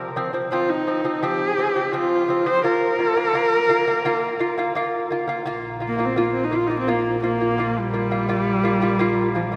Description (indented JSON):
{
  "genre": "mongolian traditional, Mongolian folk",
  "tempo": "85 BPM",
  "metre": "4/4",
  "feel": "straight",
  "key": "Bb zhi mode",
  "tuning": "A4 = 440 Hz",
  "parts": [
    { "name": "lute", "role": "arpeggios", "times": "0.0-9.6 s", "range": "F3 to F4", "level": "-26 LUFS", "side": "equal", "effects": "none" },
    { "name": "warm horsehead fiddle", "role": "melody", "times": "0.5-9.6 s", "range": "F3 to C5", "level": "-24 LUFS", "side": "equal", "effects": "none" },
    { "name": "warm double bass", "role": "drone", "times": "5.5-9.6 s", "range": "Bb1", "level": "-32 LUFS", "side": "equal", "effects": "none" }
  ],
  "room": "wet cathedral reverb, RT60 4.1 s",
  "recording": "recorded in a church or concert hall",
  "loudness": "-21 LUFS",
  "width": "mono",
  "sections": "0.0-5.5 A section; 5.5-9.6 B section",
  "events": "none",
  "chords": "0.0 F5; 2.6 Bb5"
}